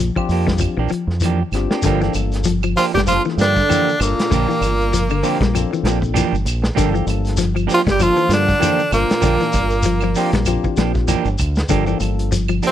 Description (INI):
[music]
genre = afrobeat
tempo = 98 BPM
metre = 4/4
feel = swing 56% on 16ths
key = G dorian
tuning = A4 = 439 Hz
[part]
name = clean electric guitar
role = arpeggios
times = 0.0-12.7 s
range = D3 to G3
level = -23 LUFS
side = left 7 dB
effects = none
[part]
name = deep dub fingered electric bass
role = bass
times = 0.0-12.6 s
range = G1 to G2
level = -20 LUFS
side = equal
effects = none
[part]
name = warm soul drum kit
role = drums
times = 0.0-12.7 s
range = hi-hat, kick drum, snare drum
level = -23 LUFS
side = equal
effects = none
[part]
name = barky tine electric piano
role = accompaniment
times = 0.2-12.3 s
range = F3 to C5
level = -26 LUFS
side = left 9 dB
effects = overdrive, phaser
[part]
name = semi-hollow electric guitar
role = stabs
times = 0.2-12.7 s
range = F3 to G4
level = -24 LUFS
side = right 10 dB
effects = none
[part]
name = claves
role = percussion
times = 0.2-12.6 s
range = none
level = -31 LUFS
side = right 15 dB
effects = none
[part]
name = shekere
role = percussion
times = 0.3-12.7 s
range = none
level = -26 LUFS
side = left 2 dB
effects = none
[part]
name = edgy tenor saxophone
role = melody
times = 2.8-12.7 s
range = Bb3 to G4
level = -19 LUFS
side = equal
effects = none
[part]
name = clear bass trombone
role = second line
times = 2.8-12.7 s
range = Bb2 to G3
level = -26 LUFS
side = right 10 dB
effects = none
[part]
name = mellow trombone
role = second line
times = 2.8-12.7 s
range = Bb2 to G3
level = -27 LUFS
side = right 3 dB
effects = none
[sound]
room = small room reverb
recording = dry, close 1970s-style studio recording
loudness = -15 LUFS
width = side -11 dB against mid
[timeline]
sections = 0.0-1.9 A section; 1.9-12.7 B section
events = none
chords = 0.0 Bb6; 1.9 Gm7; 9.2 Bb6; 11.7 Gm7